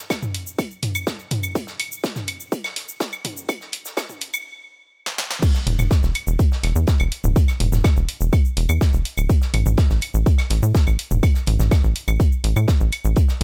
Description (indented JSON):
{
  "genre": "melodic techno",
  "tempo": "124 BPM",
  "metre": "4/4",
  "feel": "straight",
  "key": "unclear",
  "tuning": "A4 = 440 Hz",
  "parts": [
    { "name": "electronic kick drum", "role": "drums", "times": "0.1-13.3 s", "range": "none", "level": "-20 LUFS", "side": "equal", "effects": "high-pass filter on kick" },
    { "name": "house drum kit", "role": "drums", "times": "0.1-13.4 s", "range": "claves, crash cymbal, hi-hat, shaker, snare drum, toms", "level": "-29 LUFS", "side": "equal", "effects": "sidechain pumping on perc, sidechain pumping on toms, sidechain pumping on hats, sidechain pumping on cymbals" },
    { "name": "loose indie drum kit", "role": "drums", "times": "0.1-13.4 s", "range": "hi-hat, snare drum", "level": "-37 LUFS", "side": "equal", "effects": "sidechain pumping on hats, high-pass filter on hats, high-pass filter on snare, high-pass filter on room" },
    { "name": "tight sequencer bass", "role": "bass", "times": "5.7-13.4 s", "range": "D1 to A2", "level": "-21 LUFS", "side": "equal", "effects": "sidechain pumping" }
  ],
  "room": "little or no reverb",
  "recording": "high-pass filter",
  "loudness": "-21 LUFS",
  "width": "mono",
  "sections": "0.0-5.4 A section; 5.4-13.4 B section",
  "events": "build-up 0.0-5.4; filter sweep 0.0-5.4; drum fill 5.1-5.4; drop 5.4-13.4",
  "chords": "none",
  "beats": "0.10 0.59 1.07 | 1.55 2.04 2.52 3.01 | 3.49 3.97 4.46 4.94 | 5.42 5.91 6.39 6.88 | 7.36 7.84 8.33 8.81 | 9.30 9.78 10.26 10.75 | 11.23 11.71 12.20 12.68 | 13.17"
}